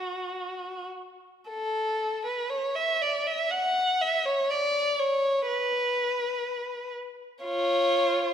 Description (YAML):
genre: classical, free, expressive piece for unaccompanied violin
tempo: 42-64 BPM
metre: 3/4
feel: rubato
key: F# minor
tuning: A4 = 438 Hz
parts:
  - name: rich violin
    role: solo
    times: 0.0-8.3 s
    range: E#4 to F#5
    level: -25 LUFS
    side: equal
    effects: none
room: wet concert hall reverb, RT60 2.0 s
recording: minimal, uncompressed stereo recording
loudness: -25 LUFS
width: side -8 dB against mid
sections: 0.0-1.5 A section; 1.5-8.3 A section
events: none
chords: none